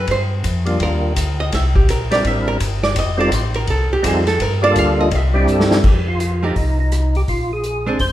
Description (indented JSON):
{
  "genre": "soul jazz organ trio",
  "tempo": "167 BPM",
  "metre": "4/4",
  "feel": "swing 63% on 8ths",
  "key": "unclear",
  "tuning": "A4 = 440 Hz",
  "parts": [
    { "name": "archtop guitar, miked and amplified", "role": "accompaniment", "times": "0.0-8.0 s", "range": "F3 to F5", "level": "-20 LUFS", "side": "right 2 dB", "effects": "none" },
    { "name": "mellow tonewheel organ", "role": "bass", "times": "0.0-8.1 s", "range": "F1 to G2", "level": "-19 LUFS", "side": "equal", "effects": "slow rotary speaker" },
    { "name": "vintage drum kit", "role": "drums", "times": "0.1-8.1 s", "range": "crash cymbal, hi-hat, kick drum, ride cymbal, rim click, snare drum", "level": "-21 LUFS", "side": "left 1 dB", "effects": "none" },
    { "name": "percussive tonewheel organ", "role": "melody", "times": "0.7-8.1 s", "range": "G3 to C5", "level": "-20 LUFS", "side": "equal", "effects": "slow rotary speaker, chorus vibrato" }
  ],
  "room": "moderate recital hall reverb, RT60 1.3 s",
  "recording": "recorded in a church or concert hall",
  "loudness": "-15 LUFS",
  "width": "side -13 dB against mid",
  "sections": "0.0-5.8 A section; 5.8-8.1 B section",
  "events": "hollow-body jazz guitar solo 0.0-5.8; drum fill 5.5-5.8",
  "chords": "0.1 Gm7; 1.5 C9; 3.0 F9; 4.4 Gm7; 5.1 Cadd9; 5.8 F7sus2; 7.3 Bb9"
}